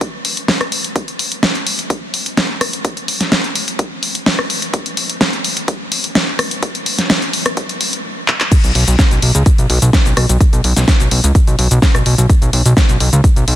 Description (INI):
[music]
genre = progressive house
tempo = 127 BPM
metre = 4/4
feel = straight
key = unclear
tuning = A4 = 440 Hz
[part]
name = big-room dance drum kit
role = drums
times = 0.0-13.6 s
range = cabasa, crash cymbal, handclaps, hi-hat, rim click, snare drum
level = -16 LUFS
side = equal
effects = sidechain pumping on hats, sidechain pumping on cymbals, sidechain pumping on perc
[part]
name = electronic kick drum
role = drums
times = 0.0-13.3 s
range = none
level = -13 LUFS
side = equal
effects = high-pass filter on kick
[part]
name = fat analog bass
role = bass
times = 8.6-13.6 s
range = B1 to C#2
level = -12 LUFS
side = equal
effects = sidechain pumping
[sound]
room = light reverb, digital ambience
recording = dense, heavily limited modern master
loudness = -12 LUFS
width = side -13 dB against mid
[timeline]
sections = 0.0-8.5 A section; 8.5-13.6 B section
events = build-up 0.0-8.5; drum fill 8.3; drop 8.5-13.6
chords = none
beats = 0.01 0.48 | 0.96 1.43 1.90 2.38 | 2.85 3.32 3.79 4.26 | 4.74 5.21 5.68 6.15 | 6.63 7.10 7.57 8.04 | 8.52 8.99 9.46 9.93 | 10.41 10.88 11.35 11.82 | 12.30 12.77 13.24